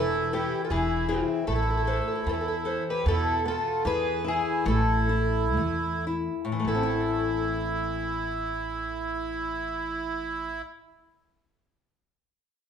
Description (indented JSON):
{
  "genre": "fado-style ballad",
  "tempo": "49-82 BPM",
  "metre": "2/4",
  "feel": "rubato",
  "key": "A minor",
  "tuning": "A4 = 440 Hz",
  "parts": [
    { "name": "fingerpicked twelve-string acoustic guitar", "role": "melody", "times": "0.0-10.6 s", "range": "E4 to B4", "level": "-29 LUFS", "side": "left 1 dB", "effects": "none" },
    { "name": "accordion", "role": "second line", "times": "0.0-10.6 s", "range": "C4 to G#4", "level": "-31 LUFS", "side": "right 5 dB", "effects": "none" },
    { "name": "nylon-string guitar", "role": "accompaniment", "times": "0.0-10.8 s", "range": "A2 to C5", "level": "-32 LUFS", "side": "left 5 dB", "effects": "none" },
    { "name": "upright bass", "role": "bass", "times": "0.0-10.6 s", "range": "E1 to E2", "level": "-30 LUFS", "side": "equal", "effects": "none" }
  ],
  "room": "moderate large studio reverb, RT60 1.1 s",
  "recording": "band playing live in one room",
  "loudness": "-25 LUFS",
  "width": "side -8 dB against mid",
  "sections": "0.0-3.1 A section; 3.1-6.7 B section; 6.7-11.3 C section",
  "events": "slowing down 3.1-6.7",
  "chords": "0.0 Esus4; 0.7 E; 1.5 Amadd9; 3.1 Esus4; 3.9 E; 4.7 A5; 6.7 Amadd9"
}